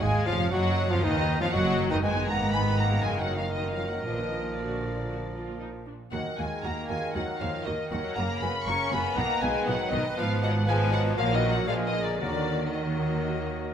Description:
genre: quick classical-period movement for symphony orchestra.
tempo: 118 BPM.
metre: 4/4.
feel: straight.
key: Eb minor.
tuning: A4 = 440 Hz.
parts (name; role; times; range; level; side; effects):
muted studio violin section; melody; 0.0-13.7 s; D5 to Db6; -34 LUFS; left 4 dB; none.
mellow hollow concert flute; second line; 0.0-13.7 s; Bb4 to Bb5; -37 LUFS; left 1 dB; none.
muted studio violin section; second line; 0.0-13.7 s; D5 to Db6; -36 LUFS; left 2 dB; none.
warm clarinet; second line; 0.0-13.7 s; Eb4 to Cb5; -35 LUFS; equal; none.
clear bassoon; accompaniment; 0.0-13.7 s; Db3 to Ab3; -35 LUFS; right 1 dB; none.
muted studio viola section; accompaniment; 0.0-13.7 s; Eb3 to Ab4; -36 LUFS; equal; none.
mellow French horn section; sustained chords; 0.0-13.7 s; D3 to Db4; -36 LUFS; left 3 dB; none.
muted studio cello section; bass; 0.0-13.7 s; Eb2 to Eb3; -33 LUFS; right 1 dB; none.
muted symphonic double bass section; bass; 0.0-13.7 s; F1 to Eb2; -31 LUFS; right 2 dB; none.
room: wet recital hall reverb, RT60 1.4 s.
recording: none.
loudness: -25 LUFS.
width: side -8 dB against mid.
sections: 0.0-13.7 A section.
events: none.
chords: 0.0 Ebm11/F; 2.0 Abm; 3.0 Ebm/Gb; 4.1 Bb; 6.1 Ebm; 8.2 Gb; 9.2 B; 10.2 Fdim/Ab; 11.2 Bmaj9#11/A#; 11.7 Bb7b9; 12.2 Ebm.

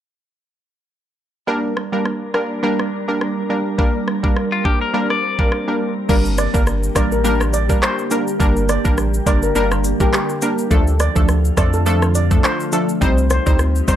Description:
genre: dancehall.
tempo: 104 BPM.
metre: 4/4.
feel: swing 56% on 16ths.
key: G minor.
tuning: A4 = 442 Hz.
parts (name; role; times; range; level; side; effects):
analog pluck; accompaniment; 1.5-14.0 s; F3 to C5; -20 LUFS; right 1 dB; chorus.
glassy FM pad; sustained chords; 2.2-14.0 s; D3 to Bb4; -26 LUFS; equal; ensemble chorus, built-in reverb, sidechain pumping.
afro-pop drum kit; drums; 1.8-14.0 s; crash cymbal, handclaps, hi-hat, kick drum, rim click, shaker; -19 LUFS; equal; none.
clean electric guitar; arpeggios; 4.5-5.9 s; F4 to D5; -21 LUFS; left 5 dB; none.
warm sub bass; bass; 6.1-14.0 s; G1 to F2; -19 LUFS; equal; none.
steel pan; melody; 6.4-14.0 s; G4 to D5; -24 LUFS; equal; none.
cabasa and woodblock; percussion; 6.4-14.0 s; none; -30 LUFS; left 3 dB; none.
room: digital ambience.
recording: dry, gritty hardware recording.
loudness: -15 LUFS.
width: side -11 dB against mid.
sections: 1.5-6.1 A section; 6.1-14.0 B section.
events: none.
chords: 1.5 Gm; 10.7 Dm; 13.0 Cm.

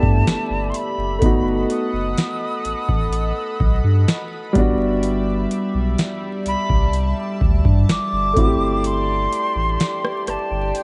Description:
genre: contemporary R&B.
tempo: 63 BPM.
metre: 4/4.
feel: straight.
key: unclear.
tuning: A4 = 440 Hz.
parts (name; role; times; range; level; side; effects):
jazz flute; melody; 0.0-10.8 s; G5 to D#6; -27 LUFS; equal; analog delay.
warm baby grand piano; accompaniment; 0.0-10.8 s; G3 to G4; -25 LUFS; equal; none.
chorused pulse-width pad; sustained chords; 0.0-10.8 s; G3 to C6; -30 LUFS; equal; none.
sub bass with octave; bass; 0.0-10.7 s; F#1 to G2; -24 LUFS; equal; none.
booming analog drum machine; drums; 0.0-10.8 s; hi-hat, kick drum, rim click, snare drum; -22 LUFS; equal; none.
room: light reverb, digital ambience.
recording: dark, warm production, vinyl crackle, nothing above 11.0 kHz.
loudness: -20 LUFS.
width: mono.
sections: 0.0-10.8 A section.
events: break 8.8-10.8.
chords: 0.0 G6; 1.2 B7; 4.6 Em7/G; 8.4 D7sus4/G.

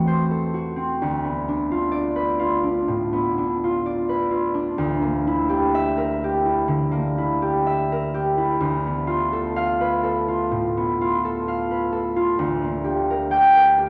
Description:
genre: classical, solo harp piece.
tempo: 63 BPM.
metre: 4/4.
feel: rubato.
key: unclear.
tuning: A4 = 440 Hz.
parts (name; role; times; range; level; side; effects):
concert harp; solo; 0.0-13.9 s; D2 to G5; -22 LUFS; equal; none.
room: wet church reverb, RT60 2.6 s.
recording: none.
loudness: -22 LUFS.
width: mono.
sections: 0.0-13.9 A section.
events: none.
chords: 0.0 Am6/E; 1.0 Dm6; 4.8 Gm6/D; 8.6 Dm6; 12.4 Gm/D.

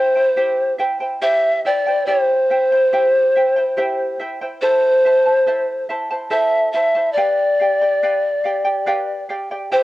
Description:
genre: andean folk, Andean ensemble.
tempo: 71 BPM.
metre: 3/4.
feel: straight.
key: unclear.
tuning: A4 = 440 Hz.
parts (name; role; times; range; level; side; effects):
breathy mellow pan flute; melody; 0.0-9.8 s; C5 to E5; -15 LUFS; equal; cassette tape.
charango; accompaniment; 0.0-9.8 s; E4 to A5; -23 LUFS; right 1 dB; cassette tape.
room: moderate studio reverb, RT60 0.6 s.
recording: home recording on cassette.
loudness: -15 LUFS.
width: side -17 dB against mid.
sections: 0.0-9.8 A section.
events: none.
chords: 0.0 C; 4.6 Am; 7.2 G7.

